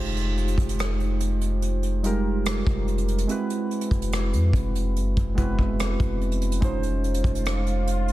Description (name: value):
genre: contemporary R&B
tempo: 72 BPM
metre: 4/4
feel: straight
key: F minor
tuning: A4 = 444 Hz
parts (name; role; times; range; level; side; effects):
- muted felt-like synth keys; accompaniment; 0.0-8.1 s; G3 to C5; -27 LUFS; right 2 dB; chorus
- long sustained 808-style bass; bass; 0.0-8.1 s; F1 to F2; -25 LUFS; equal; none
- soft brush drum kit; drums; 0.2-8.1 s; hi-hat, kick drum, rim click; -28 LUFS; equal; none
- swell; sound effects; 7.2-8.1 s; none; -35 LUFS; right 1 dB; none
room: studio ambience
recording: dense, heavily limited modern master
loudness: -22 LUFS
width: side -15 dB against mid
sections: 0.0-8.1 A section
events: swell 7.2-8.1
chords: 0.0 Fm7; 3.3 Ab7alt/F; 6.6 Dbmaj7/F